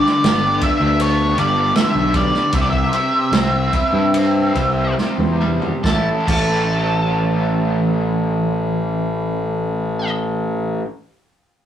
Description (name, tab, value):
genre	psychedelic rock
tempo	68-80 BPM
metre	4/4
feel	straight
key	unclear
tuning	A4 = 441 Hz
part	octave-fuzz lead guitar	melody	0.0-10.1 s	C#5 to A5	-20 LUFS	equal	distortion
part	overdriven electric guitar	riff	0.0-10.9 s	G2 to A4	-21 LUFS	equal	harmonic tremolo
part	vintage drum kit	drums	0.1-6.5 s	crash cymbal, kick drum, ride cymbal, snare drum, toms	-22 LUFS	right 1 dB	none
part	fuzz fingered electric bass	bass	0.2-10.8 s	G1 to G2	-20 LUFS	equal	overdrive
room	wet studio reverb, RT60 0.6 s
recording	rough rehearsal-room recording, warm saturation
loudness	-15 LUFS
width	side -10 dB against mid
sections	0.0-5.8 A section; 5.8-9.3 B section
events	slowing down 0.0-5.8; drum fill 5.0-5.8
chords	0.0 G; 2.5 C; 5.8 A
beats	0.24 0.99 1.75 | 2.53 3.32 4.13 4.97 | 5.83 6.71 7.58 8.46